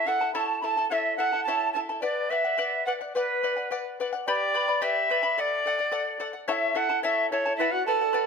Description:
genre	andean folk, Andean ensemble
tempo	108 BPM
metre	2/4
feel	straight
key	B minor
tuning	A4 = 440 Hz
part	bright reedy quena	melody	0.0-8.3 s	B4 to B5	-26 LUFS	right 2 dB	none
part	mellow pan flute	second line	0.0-3.9, 7.6-8.3 s	E4 to A5	-31 LUFS	right 2 dB	slapback echo
part	charango	accompaniment	0.0-8.3 s	E4 to B5	-29 LUFS	left 5 dB	none
room	light reverb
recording	close, detailed microphones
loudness	-24 LUFS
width	side -5 dB against mid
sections	0.0-4.3 A section; 4.3-8.3 B section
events	none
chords	0.0 A; 2.0 Bm; 4.3 G; 5.4 D; 6.5 A; 7.6 Bm

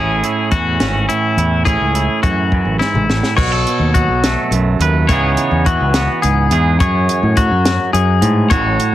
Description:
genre	math rock and midwest emo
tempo	70 BPM (dotted quarters)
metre	6/8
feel	straight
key	A lydian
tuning	A4 = 436 Hz
part	twangy electric guitar	accompaniment	0.0-8.9 s	F#2 to B4	-18 LUFS	right 5 dB	none
part	twangy electric guitar	arpeggios	0.0-8.9 s	E4 to C#5	-18 LUFS	left 7 dB	none
part	growling fingered electric bass	bass	0.0-8.9 s	G#1 to A2	-16 LUFS	equal	overdrive
part	compact cocktail drum kit	drums	0.2-8.9 s	crash cymbal, hi-hat, kick drum, snare drum, toms	-19 LUFS	equal	none
room	light reverb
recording	heavily compressed radio sound, multiband compression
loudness	-12 LUFS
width	side -13 dB against mid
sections	0.0-3.4 A section; 3.4-8.9 B section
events	drum fill 2.5-3.4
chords	0.0 Amaj7; 3.4 B9; 5.1 C#m9; 6.8 F#m9

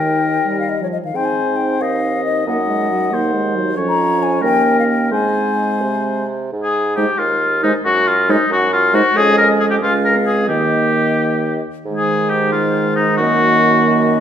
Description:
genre	quick classical-period movement for wind quintet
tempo	90 BPM (dotted quarters)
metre	6/8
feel	rubato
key	Ab major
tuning	A4 = 442 Hz
part	mellow hollow silver concert flute	melody	0.0-14.2 s	C5 to Bb5	-21 LUFS	left 5 dB	none
part	warm oboe	second line	0.0-14.2 s	Eb4 to Eb5	-17 LUFS	left 2 dB	none
part	dark clarinet	accompaniment	0.0-14.2 s	Ab3 to Eb4	-23 LUFS	right 5 dB	none
part	mellow French horn	accompaniment	0.0-14.2 s	Eb3 to C4	-22 LUFS	right 1 dB	none
part	mellow bassoon	bass	0.0-14.2 s	Db2 to C3	-21 LUFS	right 2 dB	none
room	wet recital hall reverb, RT60 1.4 s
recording	none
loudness	-14 LUFS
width	side -9 dB against mid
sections	0.0-6.5 A section; 6.5-14.2 A section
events	none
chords	0.0 Eb; 1.1 Ab; 2.5 Ab7/Gb; 3.8 Db/F; 4.4 Eb7; 5.1 Ab; 6.5 Ab5; 7.9 N.C.; 9.2 Db/F; 9.8 Db; 10.5 Eb; 11.9 Ab; 13.2 Gb6

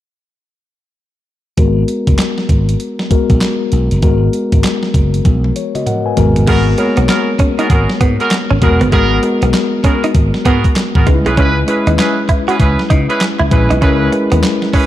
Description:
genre	R&B, new jack swing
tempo	98 BPM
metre	4/4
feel	swing 63% on 16ths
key	G# minor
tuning	A4 = 441 Hz
part	mellow tine electric piano	accompaniment	1.6-14.9 s	G#3 to G#5	-16 LUFS	left 4 dB	slow stereo tremolo, low-pass filter
part	slap bass	bass	1.6-14.4 s	E1 to C#3	-14 LUFS	equal	none
part	crisp 8-bit digital drum machine	drums	1.6-14.9 s	crash cymbal, handclaps, hi-hat, kick drum, snare drum, toms	-14 LUFS	equal	overdrive
part	direct-recorded clean electric guitar	riff	6.5-14.9 s	G#3 to F#4	-20 LUFS	right 4 dB	lush chorus
part	warm horn section	stabs	6.5-14.9 s	B3 to B4	-18 LUFS	right 3 dB	none
room	digital ambience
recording	dark, warm production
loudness	-11 LUFS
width	side -13 dB against mid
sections	1.6-6.5 A section; 6.5-14.9 B section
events	filter sweep on tine electric piano 1.6-6.5; drum fill 5.2-6.5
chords	1.6 G#m9; 11.1 C#m7

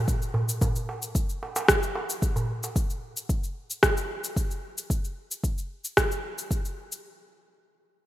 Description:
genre	downtempo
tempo	112 BPM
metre	4/4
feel	straight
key	none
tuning	none
part	electronic cabasa and rim click	drums	0.1-7.0 s	none	-26 LUFS	equal	none
part	electronic kick drum	drums	0.1-6.6 s	none	-27 LUFS	equal	none
part	darbuka	percussion	0.3-2.7 s	none	-30 LUFS	right 1 dB	none
room	light reverb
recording	rough home demo mix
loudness	-25 LUFS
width	side -14 dB against mid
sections	0.0-7.0 A section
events	none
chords	none

